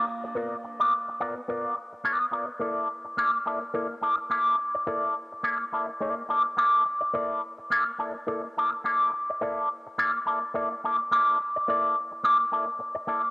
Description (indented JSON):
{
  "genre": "funk",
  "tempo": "106 BPM",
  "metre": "4/4",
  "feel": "swing 56% on 16ths",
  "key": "unclear",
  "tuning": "A4 = 440 Hz",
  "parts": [
    { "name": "electric guitar with an envelope filter", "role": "accompaniment", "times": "0.0-13.3 s", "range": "Bb3 to D5", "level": "-24 LUFS", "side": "equal", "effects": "wah, cassette tape" }
  ],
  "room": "moderate spring reverb, RT60 1.6 s, small room ambience",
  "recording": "home recording on cassette",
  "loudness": "-24 LUFS",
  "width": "side -25 dB against mid",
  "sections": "0.0-2.6 A section; 2.6-13.3 B section",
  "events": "none",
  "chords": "0.0 G7#9 (rootless); 2.6 Bbmaj7#11"
}